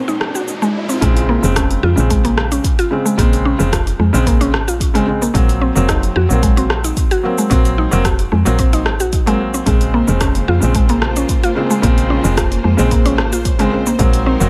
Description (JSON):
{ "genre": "organic downtempo", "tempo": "111 BPM", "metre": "4/4", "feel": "straight", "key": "Bb minor", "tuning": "A4 = 440 Hz", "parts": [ { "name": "felt-muted upright piano", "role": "accompaniment", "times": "0.0-14.5 s", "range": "Bb2 to C4", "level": "-22 LUFS", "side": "equal", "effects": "sidechain pumping, tape echo" }, { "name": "rich studio string section", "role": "sustained chords", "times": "0.0-1.0, 9.7-14.5 s", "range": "Bb2 to C5", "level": "-28 LUFS", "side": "equal", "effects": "sidechain pumping" }, { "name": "mallet-like synth pluck", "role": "arpeggios", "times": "0.0-14.4 s", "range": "Ab3 to Gb4", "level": "-21 LUFS", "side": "equal", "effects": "chorus, tape echo" }, { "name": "riser", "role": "sound effects", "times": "0.0-1.0 s", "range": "none", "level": "-28 LUFS", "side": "equal", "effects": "none" }, { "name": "deep house drum kit", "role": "drums", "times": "0.1-14.5 s", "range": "cabasa, hi-hat, rim click", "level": "-24 LUFS", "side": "equal", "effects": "none" }, { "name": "woody FM bass", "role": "bass", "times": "1.0-14.5 s", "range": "F1 to F2", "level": "-19 LUFS", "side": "equal", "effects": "none" }, { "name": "electronic kick drum", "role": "drums", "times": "1.0-14.1 s", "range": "none", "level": "-19 LUFS", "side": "equal", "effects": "none" } ], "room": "light reverb, digital ambience", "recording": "none", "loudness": "-15 LUFS", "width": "mono", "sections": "0.0-1.0 A section; 1.0-14.5 B section", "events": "riser 0.0-1.0", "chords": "0.0 Ab7/Bb; 1.0 Bbm7; 5.3 Ab7; 9.7 Bbm7; 14.0 Ab7" }